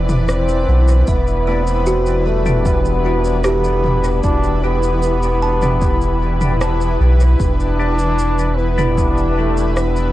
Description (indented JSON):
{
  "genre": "ambient dub",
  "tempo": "76 BPM",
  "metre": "4/4",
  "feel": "straight",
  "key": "E minor",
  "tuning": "A4 = 440 Hz",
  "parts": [
    { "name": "granular cloud pad", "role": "sustained chords", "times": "0.0-10.1 s", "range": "E3 to E5", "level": "-23 LUFS", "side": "left 1 dB", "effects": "built-in reverb, cassette tape" },
    { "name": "buzzing kalimba", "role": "arpeggios", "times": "0.0-8.6 s", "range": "G3 to A5", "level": "-24 LUFS", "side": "right 3 dB", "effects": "cassette tape, tape echo" },
    { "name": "warm sub bass", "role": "bass", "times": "0.0-10.1 s", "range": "E1 to B1", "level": "-17 LUFS", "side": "equal", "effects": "none" },
    { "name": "wind-like tuned noise texture", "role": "texture", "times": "0.0-10.1 s", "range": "E4 to E5", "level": "-30 LUFS", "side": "equal", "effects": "built-in reverb, cassette tape" },
    { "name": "organic electronic drum kit", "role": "drums", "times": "0.1-10.1 s", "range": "rim click, shaker, toms", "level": "-25 LUFS", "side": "equal", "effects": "overdrive, cassette tape, dub echo" },
    { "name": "mellow trombone", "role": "melody", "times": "0.3-10.1 s", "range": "A3 to D4", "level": "-20 LUFS", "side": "equal", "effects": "cassette tape, tape echo" },
    { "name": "electronic kick drum", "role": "drums", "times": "1.1-9.1 s", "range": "none", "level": "-20 LUFS", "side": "equal", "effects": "overdrive, cassette tape" },
    { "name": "percussive tonewheel organ", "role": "stabs", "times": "1.5-10.1 s", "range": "B3 to B4", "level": "-27 LUFS", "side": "left 2 dB", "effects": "chorus vibrato, slow rotary speaker, cassette tape, dub echo" }
  ],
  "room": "little or no reverb",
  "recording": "home recording on cassette",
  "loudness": "-14 LUFS",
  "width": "side -15 dB against mid",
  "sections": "0.0-10.1 A section",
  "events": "none",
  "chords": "0.0 Em7",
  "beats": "0.29 | 1.08 1.87 2.66 3.45 | 4.24 5.03 5.82 6.61 | 7.40 8.19 8.98 9.77"
}